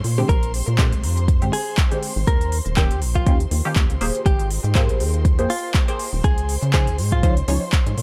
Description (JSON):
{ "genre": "deep house", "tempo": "121 BPM", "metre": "4/4", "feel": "swing 55% on 16ths", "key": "unclear", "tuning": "A4 = 441 Hz", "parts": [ { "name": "rubbery square bass", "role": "bass", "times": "0.0-8.0 s", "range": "Eb1 to Db3", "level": "-24 LUFS", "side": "equal", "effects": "sidechain pumping" }, { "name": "deep house drum kit", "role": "drums", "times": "0.0-8.0 s", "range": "handclaps, hi-hat", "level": "-30 LUFS", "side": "equal", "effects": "none" }, { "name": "warm studio string section", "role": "texture", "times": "0.0-8.0 s", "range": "D4 to G5", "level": "-47 LUFS", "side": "equal", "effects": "none" }, { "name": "warm symphonic violin section", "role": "texture", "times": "0.0-8.0 s", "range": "C5 to C6", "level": "-39 LUFS", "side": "equal", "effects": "sidechain pumping" }, { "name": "filtered dub chord stab", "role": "stabs", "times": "0.2-7.6 s", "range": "D3 to Db5", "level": "-29 LUFS", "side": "equal", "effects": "phaser, lush chorus, sidechain pumping, analog delay" }, { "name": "direct-recorded clean electric guitar", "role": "melody", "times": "0.3-7.3 s", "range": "F4 to Bb4", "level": "-31 LUFS", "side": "equal", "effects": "analog delay" }, { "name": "electronic kick drum", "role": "drums", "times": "0.3-7.8 s", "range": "none", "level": "-21 LUFS", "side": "equal", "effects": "none" } ], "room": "digital ambience", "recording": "dry, gritty hardware recording", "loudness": "-20 LUFS", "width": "mono", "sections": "0.0-8.0 A section", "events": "none", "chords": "0.0 Bb13; 2.3 Eb7; 4.3 Abmaj9; 6.2 Dbmaj9" }